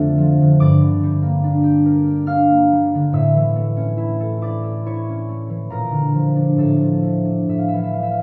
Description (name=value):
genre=classical, solo harp piece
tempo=62-73 BPM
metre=3/4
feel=rubato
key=unclear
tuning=A4 = 440 Hz
part: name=concert harp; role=solo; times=0.0-8.2 s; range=F2 to F6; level=-18 LUFS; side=equal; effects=none
room=wet recital hall reverb, RT60 1.3 s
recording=none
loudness=-17 LUFS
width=mono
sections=0.0-8.2 A section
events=none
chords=0.0 Dm/F; 0.6 Gm; 3.1 A; 5.7 Bb; 6.6 Dm/A; 7.5 A5